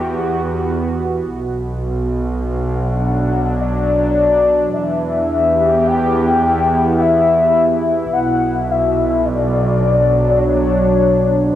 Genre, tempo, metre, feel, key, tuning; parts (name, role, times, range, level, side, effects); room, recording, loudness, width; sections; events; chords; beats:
ambient; 53 BPM; 3/4; straight; A4 = 441 Hz
warm analog pad; sustained chords; 0.0-11.6 s; B2 to G4; -17 LUFS; right 2 dB; chorus, cassette tape
clear studio double bass section; bass; 0.0-11.6 s; B1 to E2; -22 LUFS; right 2 dB
warm velvety synth lead; melody; 2.5-11.6 s; C#5 to G5; -16 LUFS; left 4 dB; chorus, cassette tape, analog delay
wet studio reverb, RT60 0.5 s; home recording on cassette; -14 LUFS; side -12 dB against mid
0.0-11.6 A section
0.0 Em; 1.3 Bm; 4.7 Em; 8.1 Bmadd9
0.17 | 1.31 2.44 3.57 | 4.70 5.83 6.97 | 8.10 9.23 10.36 | 11.49